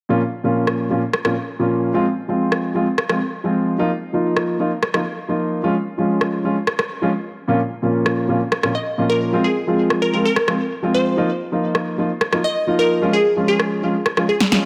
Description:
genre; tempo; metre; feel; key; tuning
EDM, festival progressive house; 130 BPM; 4/4; straight; unclear; A4 = 440 Hz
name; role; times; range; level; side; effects
warm grand piano; accompaniment; 0.1-14.7 s; Bb2 to F4; -21 LUFS; equal; tape echo
electronic rim click and snare drum; drums; 0.7-14.6 s; none; -24 LUFS; equal; overdrive
glassy wavetable pluck; melody; 8.7-14.7 s; Ab4 to Eb5; -23 LUFS; equal; chorus, delay
room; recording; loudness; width
moderate lush hall reverb, RT60 1.8 s, studio ambience; none; -19 LUFS; mono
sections
0.1-14.7 A section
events
drum fill 14.4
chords
0.1 Bbm; 1.9 Fm; 3.8 Ebsus2; 5.6 Db; 7.5 Bbm; 9.3 Fm; 11.2 Ebsus2; 13.0 Db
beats
| 0.10 0.56 1.02 1.48 | 1.94 2.40 2.87 3.33 | 3.79 4.25 4.71 5.17 | 5.63 6.10 6.56 7.02 | 7.48 7.94 8.40 8.87 | 9.33 9.79 10.25 10.71 | 11.17 11.63 12.10 12.56 | 13.02 13.48 13.94 14.40

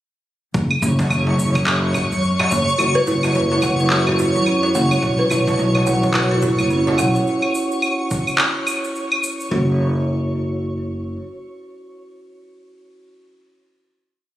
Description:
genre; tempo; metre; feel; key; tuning
organic downtempo; 107 BPM; 4/4; swing 60% on 16ths; unclear; A4 = 440 Hz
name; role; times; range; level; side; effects
upright bass; bass; 0.5-11.2 s; F#1 to F#2; -20 LUFS; equal; sidechain pumping
electronic cabasa, claves and handclaps; drums; 0.5-9.5 s; none; -23 LUFS; equal; none
electronic kick drum; drums; 0.5-8.2 s; none; -25 LUFS; equal; overdrive
twinkling granular texture; texture; 0.9-9.5 s; C#5; -25 LUFS; equal; built-in reverb
darbuka; percussion; 0.8-7.1 s; none; -29 LUFS; equal; none
kalimba; arpeggios; 2.8-9.8 s; C#4 to F#5; -20 LUFS; right 1 dB; vintage 12-bit sampler grit, tape echo
room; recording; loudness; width
moderate lush hall reverb, RT60 2.6 s; recorded on a phone in the room, compression; -16 LUFS; side -14 dB against mid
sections
0.5-9.5 groove; 9.5-11.8 final note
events
none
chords
0.5 F#5; 7.3 N.C.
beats
| 0.55 1.10 1.67 2.23 | 2.79 3.35 3.91 4.47 | 5.03 5.59 6.15 6.71 | 7.27 7.83 8.39 8.96 | 9.52 10.08 10.64

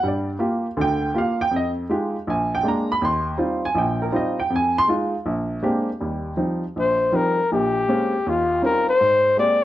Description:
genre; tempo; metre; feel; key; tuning
jazz; 161 BPM; 4/4; swing 65% on 8ths; Eb major; A4 = 439 Hz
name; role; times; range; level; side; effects
warm baby grand piano; accompaniment; 0.0-9.6 s; Bb1 to C6; -21 LUFS; right 1 dB; none
breathy trumpet; melody; 6.8-9.6 s; F4 to D5; -18 LUFS; left 2 dB; none
room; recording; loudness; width
wet studio reverb, RT60 0.6 s; worn, warbling old tape, cassette tape, warbly pitch drift; -19 LUFS; side -14 dB against mid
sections
0.0-6.0 A section; 6.0-9.6 B section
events
none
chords
0.0 Gm7; 1.5 Fm9; 2.3 Bb7; 3.0 Eb69; 4.5 Fm7; 5.3 Bb13; 6.0 Eb69; 7.5 Bbm9; 8.2 Eb13; 9.0 Abmaj9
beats
| 0.03 0.41 0.78 1.15 | 1.53 1.90 2.27 2.65 | 3.02 3.39 3.76 4.14 | 4.51 4.88 5.26 5.63 | 6.00 6.38 6.75 7.12 | 7.50 7.87 8.25 8.62 | 8.99 9.37

